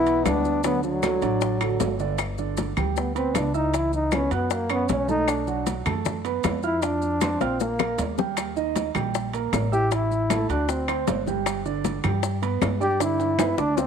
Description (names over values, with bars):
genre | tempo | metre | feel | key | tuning
Afro-Cuban jazz | 155 BPM | 4/4 | straight | G major | A4 = 439 Hz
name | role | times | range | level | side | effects
warm trombone | melody | 0.0-13.9 s | F#3 to G4 | -25 LUFS | left 1 dB | none
breathy tenor saxophone | second line | 0.0-2.0 s | D3 to B3 | -30 LUFS | left 14 dB | none
dark baby grand piano | accompaniment | 0.0-13.9 s | D3 to F#6 | -28 LUFS | right 13 dB | none
upright bass | bass | 0.0-13.9 s | G1 to G2 | -29 LUFS | left 1 dB | none
congas | percussion | 0.1-13.9 s | none | -32 LUFS | left 2 dB | none
maracas | percussion | 0.1-13.9 s | none | -39 LUFS | left 14 dB | none
timbales | percussion | 0.1-13.9 s | none | -33 LUFS | right 12 dB | none
bongos | percussion | 0.3-13.9 s | none | -29 LUFS | left 14 dB | none
claves | percussion | 0.3-13.6 s | none | -34 LUFS | left 15 dB | none
room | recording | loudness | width
light reverb, small room ambience | 1960s-style stereo with parts hard left and right | -22 LUFS | side -7 dB against mid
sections
0.0-2.2 A section; 2.2-13.9 B section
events
trombone solo 2.2-13.9; drum fill 7.4-8.4, 13.0-13.9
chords
0.0 Em7; 0.6 D; 2.2 G6; 3.7 C#m7; 4.5 F#5; 5.3 Bm7; 6.8 F5; 7.6 Bb5; 8.4 Eb; 9.9 A5; 10.7 D7; 11.5 G6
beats
0.26 | 0.64 1.03 1.42 1.80 | 2.19 2.58 2.96 3.35 | 3.74 4.12 4.51 4.90 | 5.28 5.67 6.06 6.44 | 6.83 7.21 7.60 7.99 | 8.37 8.76 9.15 9.53 | 9.92 10.30 10.69 11.07 | 11.46 11.85 12.23 12.62 | 13.00 13.39 13.77